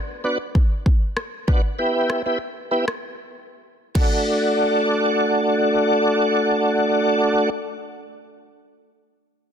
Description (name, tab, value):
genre	dancehall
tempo	97 BPM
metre	4/4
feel	straight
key	D major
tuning	A4 = 441 Hz
part	tonewheel organ	accompaniment	0.2-7.5 s	A3 to G4	-19 LUFS	equal	chorus vibrato, slow rotary speaker
part	afro-pop drum kit	drums	0.6-4.1 s	crash cymbal, kick drum, rim click	-21 LUFS	equal	soft clipping on snare
room	light reverb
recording	dense, heavily limited modern master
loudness	-18 LUFS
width	side -8 dB against mid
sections	0.0-4.3 A section; 4.3-6.7 B section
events	break 3.0-4.3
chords	0.0 Bm; 1.8 Em; 4.0 D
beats	0.55 1.17 | 1.79 2.41 3.02 3.64 | 4.26 4.88 5.50 6.12